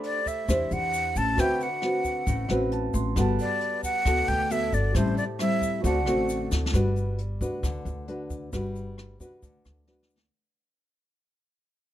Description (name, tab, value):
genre	bossa nova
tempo	134 BPM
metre	4/4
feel	straight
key	G major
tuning	A4 = 440 Hz
part	breathy jazz flute	melody	0.0-6.5 s	C5 to A5	-28 LUFS	right 1 dB	none
part	nylon-string guitar	accompaniment	0.0-10.3 s	A2 to C5	-29 LUFS	left 2 dB	none
part	warm concert grand piano	accompaniment	0.0-6.8 s	F#4 to C6	-37 LUFS	right 4 dB	none
part	jazz brush drum kit	drums	0.0-10.3 s	hi-hat, kick drum, rim click, snare drum	-32 LUFS	equal	none
part	tube shaker	percussion	0.3-10.3 s	none	-43 LUFS	left 5 dB	none
part	upright bass	bass	0.5-10.3 s	G1 to E2	-28 LUFS	equal	none
room	little or no reverb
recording	close, detailed microphones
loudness	-24 LUFS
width	side -12 dB against mid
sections	0.0-6.7 A section; 6.7-10.3 B section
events	grand piano fill 2.3-3.2; drum fill 6.5, 9.9-10.3; fade-out 6.7-10.3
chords	0.0 Am11; 1.4 D13; 3.2 Gmaj9; 5.0 Am7; 5.8 D7; 6.7 Gmaj7